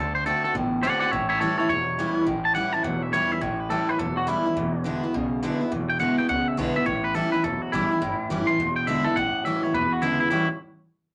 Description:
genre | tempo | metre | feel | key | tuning
rockabilly | 209 BPM | 4/4 | swing 64% on 8ths | A mixolydian | A4 = 440 Hz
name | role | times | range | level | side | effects
twangy electric guitar | melody | 0.0-10.5 s | E4 to C6 | -27 LUFS | equal | none
picked steel-string acoustic guitar | accompaniment | 0.0-10.5 s | E2 to F#4 | -29 LUFS | equal | none
electric guitar through a small old amp | riff | 0.0-10.5 s | E2 to F#4 | -33 LUFS | equal | none
upright bass | bass | 0.0-10.5 s | E1 to D2 | -38 LUFS | equal | none
room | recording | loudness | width
wet small room reverb, RT60 0.5 s | none | -24 LUFS | mono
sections
0.0-9.2 A section; 9.2-10.3 B section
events
none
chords
0.0 D7; 1.1 A7; 4.6 E7; 6.9 A7; 8.6 E7; 9.2 A7; 9.7 E7; 10.3 A6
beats
0.26 0.54 0.83 | 1.12 1.41 1.69 1.98 | 2.27 2.55 2.84 3.13 | 3.42 3.70 3.99 4.28 | 4.57 4.85 5.14 5.43 | 5.71 6.00 6.29 6.58 | 6.86 7.15 7.44 7.72 | 8.01 8.30 8.59 8.87 | 9.16 9.45 9.73 10.02 | 10.31

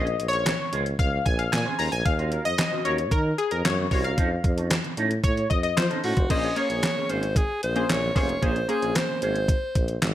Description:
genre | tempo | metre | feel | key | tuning
early-eighties boogie funk | 113 BPM | 4/4 | straight | Bb minor | A4 = 440 Hz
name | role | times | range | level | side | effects
funky polysynth comp | accompaniment | 0.0-9.4 s | Bb3 to Bb5 | -27 LUFS | left 3 dB | chorus
electric guitar with an envelope filter | riff | 0.0-10.1 s | Db4 to Db5 | -32 LUFS | right 4 dB | lush chorus
warm tuba | bass | 0.0-10.1 s | F1 to F3 | -28 LUFS | equal | none
clean 12-bit digital drum machine | drums | 0.1-10.1 s | crash cymbal, handclaps, hi-hat, kick drum, snare drum | -25 LUFS | equal | gated reverb
bright alto saxophone | melody | 6.0-10.0 s | Gb4 to Eb5 | -27 LUFS | equal | slapback echo
room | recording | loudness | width
light reverb | none | -22 LUFS | side -12 dB against mid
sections
0.0-6.3 A section; 6.3-10.1 B section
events
analog polysynth solo 0.0-6.3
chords
0.0 Bbm9; 2.1 Ebm7; 4.2 F7b13; 6.3 Bbm9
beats
0.46 0.99 1.52 | 2.05 2.58 3.12 3.65 | 4.18 4.71 5.24 5.77 | 6.30 6.83 7.36 7.89 | 8.43 8.96 9.49 10.02

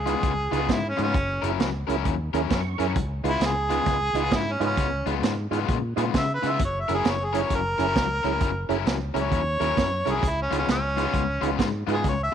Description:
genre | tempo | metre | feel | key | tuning
electric blues shuffle | 132 BPM | 4/4 | swing 64% on 8ths | Db mixolydian | A4 = 440 Hz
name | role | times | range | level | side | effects
warm harmonica | melody | 0.0-12.3 s | Db4 to Fb5 | -26 LUFS | right 1 dB | overdrive, slapback echo
fingered electric bass | bass | 0.0-12.3 s | Gb1 to Db3 | -29 LUFS | equal | none
tonewheel organ | accompaniment | 0.1-12.3 s | Db4 to Db6 | -31 LUFS | right 13 dB | slow rotary speaker, overdrive, chorus vibrato
crunchy overdriven guitar | riff | 0.1-12.3 s | Db3 to Bb4 | -29 LUFS | left 12 dB | harmonic tremolo
vintage drum kit | drums | 0.1-12.2 s | hi-hat, kick drum, snare drum | -28 LUFS | right 2 dB | none
room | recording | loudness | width
light reverb, studio reverb | 1960s-style stereo with parts hard left and right | -22 LUFS | side -8 dB against mid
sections
0.0-12.3 A section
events
harmonica solo 0.0-12.3; tonewheel organ fill 2.3-3.0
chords
0.0 Db7; 1.1 Gb7; 3.0 Db7; 6.6 Gb7; 10.2 Db7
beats
0.23 0.69 | 1.14 1.60 2.05 2.51 | 2.96 3.41 3.87 4.32 | 4.78 5.23 5.69 6.14 | 6.59 7.05 7.50 7.96 | 8.41 8.86 9.32 9.77 | 10.22 10.68 11.13 11.59 | 12.04

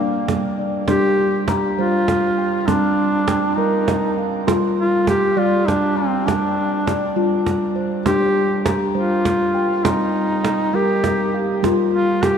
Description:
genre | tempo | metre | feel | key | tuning
world meditative, meditative tuned percussion | 67 BPM (dotted quarters) | 6/8 | straight | G minor | A4 = 441 Hz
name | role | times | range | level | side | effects
warm duduk | melody | 0.0-12.4 s | Bb3 to G4 | -20 LUFS | equal | shimmer reverb, tape echo
steel tongue drum | arpeggios | 0.0-12.4 s | G3 to C6 | -20 LUFS | equal | none
cajon | percussion | 0.3-12.4 s | none | -26 LUFS | right 4 dB | none
room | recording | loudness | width
wet cathedral reverb, RT60 5.2 s | in a vast, echoing space | -16 LUFS | side -7 dB against mid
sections
0.9-12.4 A section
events
none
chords
0.0 Gm; 0.9 Dm/G; 2.7 Cm/G; 4.5 Gm; 8.1 Dm/G; 9.8 Cm/G; 11.6 F5/G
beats
| 0.88 1.78 | 2.68 3.58 | 4.48 5.37 | 6.27 7.16 | 8.06 8.95 | 9.85 10.74 | 11.63

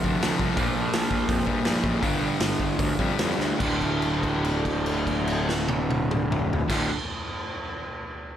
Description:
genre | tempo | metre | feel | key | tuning
punk rock | 144-169 BPM | 4/4 | straight | D minor | A4 = 442 Hz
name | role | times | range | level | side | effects
raw garage guitar | riff | 0.0-6.9 s | D2 to Bb3 | -27 LUFS | right 4 dB | overdrive
sludgy distorted guitar | riff | 0.0-6.9 s | D2 to Bb3 | -29 LUFS | left 10 dB | overdrive
fuzz picked electric bass | bass | 0.0-6.9 s | D1 to G2 | -30 LUFS | equal | overdrive
raw garage drum kit | drums | 0.0-6.8 s | crash cymbal, hi-hat, kick drum, snare drum, toms | -28 LUFS | equal | none
room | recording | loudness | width
light reverb | none | -23 LUFS | side -10 dB against mid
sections
0.0-3.6 A section; 3.6-6.9 B section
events
slowing down 0.6-3.6; drum fill 3.4; held note 3.6-6.7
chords
0.0 F5; 0.6 Bb5; 2.0 G5; 3.6 D5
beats
0.22 | 0.58 0.93 1.29 1.66 | 2.03 2.40 2.79 3.19 | 3.60 4.02 4.44 4.86 | 5.27 5.69 6.11 6.53

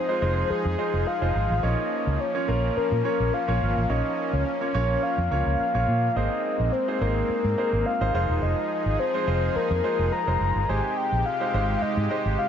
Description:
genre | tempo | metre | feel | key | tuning
pop | 106 BPM | 4/4 | straight | Bb dorian | A4 = 440 Hz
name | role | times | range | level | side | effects
soft octave-layered synth lead | melody | 0.0-12.5 s | Ab4 to Bb5 | -26 LUFS | left 4 dB | chorus, ping-pong delay
soft supersaw | sustained chords | 0.0-12.5 s | C3 to Ab4 | -31 LUFS | right 1 dB | none
clear grand piano | accompaniment | 0.1-12.4 s | Ab3 to Db5 | -30 LUFS | right 5 dB | none
vintage muted fingered electric bass | bass | 0.2-12.3 s | E1 to Bb2 | -26 LUFS | equal | none
room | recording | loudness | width
moderate plate reverb, RT60 2.7 s | dreamy mix soaked in reverb, nothing above 7.9 kHz | -22 LUFS | side -8 dB against mid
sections
0.0-12.5 A section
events
none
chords
0.0 Fm7; 1.6 Bbm; 6.2 Abadd9; 8.1 Fm7; 10.7 Abmaj7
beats
0.50 1.07 | 1.63 2.20 2.77 3.33 | 3.90 4.46 5.03 5.60 | 6.16 6.73 7.29 7.86 | 8.43 8.99 9.56 10.12 | 10.69 11.26 11.82 12.39

